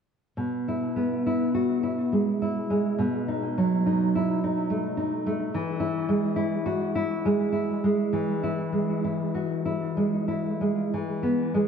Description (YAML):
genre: romantic piece for solo classical guitar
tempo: 61-72 BPM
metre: 3/4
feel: rubato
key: E major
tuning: A4 = 438 Hz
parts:
  - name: nylon-string guitar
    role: solo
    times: 0.4-11.7 s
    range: B2 to F#4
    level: -24 LUFS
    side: equal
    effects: analog delay
room: wet plate reverb, RT60 2.4 s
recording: dreamy mix soaked in reverb, cassette tape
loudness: -24 LUFS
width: side -7 dB against mid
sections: 0.4-10.9 A section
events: none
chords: 0.4 E/B; 3.0 B7; 5.5 E